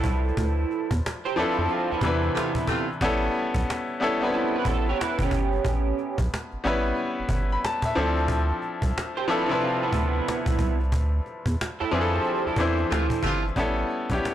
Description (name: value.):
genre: R&B, neo-soul.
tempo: 91 BPM.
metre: 4/4.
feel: swing 63% on 16ths.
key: D dorian.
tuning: A4 = 440 Hz.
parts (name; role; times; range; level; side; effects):
electric guitar through a small old amp; second line; 0.0-13.4 s; B3 to C#5; -28 LUFS; right 7 dB; analog chorus.
bright grand piano; accompaniment; 0.0-14.3 s; C3 to B5; -26 LUFS; left 2 dB; none.
rubbery square bass; bass; 0.0-14.2 s; G1 to F2; -26 LUFS; equal; none.
cajon; drums; 0.0-14.3 s; none; -30 LUFS; equal; none.
warm horn section; stabs; 2.3-2.9, 12.9-13.4 s; C3 to F4; -31 LUFS; equal; none.
room: light reverb, small room reverb.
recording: blown-out, overdriven recording, overdrive.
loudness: -23 LUFS.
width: side -11 dB against mid.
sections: 0.0-13.6 A section.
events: band accent 0.4-3.0, 10.9-13.6.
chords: 0.0 Dm9; 3.0 A9; 8.0 Dm9; 13.6 A9.